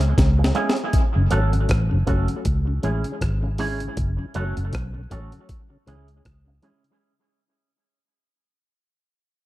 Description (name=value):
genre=dub reggae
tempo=79 BPM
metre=4/4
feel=swing 57% on 16ths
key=C# minor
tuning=A4 = 439 Hz
part: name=vintage muted fingered electric bass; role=bass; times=0.0-6.6 s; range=F#1 to C#2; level=-21 LUFS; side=equal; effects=none
part: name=breakbeat sampler-style drum kit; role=drums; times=0.0-7.0 s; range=hi-hat, kick drum, rim click, snare drum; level=-23 LUFS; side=equal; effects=none
part: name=electric guitar with an envelope filter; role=accompaniment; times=0.4-6.8 s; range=G#3 to A4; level=-29 LUFS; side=right 3 dB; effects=lush chorus, tape echo
part: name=mellow tonewheel organ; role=accompaniment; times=1.2-6.9 s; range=F#2 to C#4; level=-32 LUFS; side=left 2 dB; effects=chorus vibrato, stopped rotary speaker, tape echo
room=light reverb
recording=echo-heavy mix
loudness=-20 LUFS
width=side -16 dB against mid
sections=0.9-7.0 A section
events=break 0.0-0.9; drum fill 0.0-0.9; fade-out 0.9-7.0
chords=0.0 C#m; 0.9 F#m; 2.5 C#m; 4.0 F#m; 5.5 C#m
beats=0.17 | 0.93 1.69 2.45 3.21 | 3.97 4.73 5.49 6.25